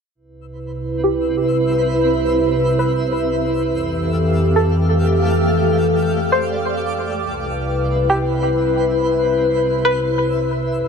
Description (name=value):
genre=hip hop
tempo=free time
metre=none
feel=none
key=C major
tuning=A4 = 440 Hz
part: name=warbly tape-like pad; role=sustained chords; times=0.6-10.9 s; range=C2 to B4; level=-17 LUFS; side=equal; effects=chorus, built-in reverb, low-pass filter
part: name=twinkling granular texture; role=texture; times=1.0-10.9 s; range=A3 to F5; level=-26 LUFS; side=right 1 dB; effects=built-in reverb
part: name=string-like resonator pluck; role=melody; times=1.0-10.7 s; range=G4 to C5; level=-22 LUFS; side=right 1 dB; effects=chorus, phaser, low-pass filter, analog delay
room=moderate plate reverb, RT60 2.8 s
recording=echo-heavy mix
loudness=-16 LUFS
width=side -6 dB against mid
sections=0.1-10.9 A section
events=filter sweep 0.1-10.9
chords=0.1 Cmaj7; 3.7 Fmaj9; 7.2 Cmaj7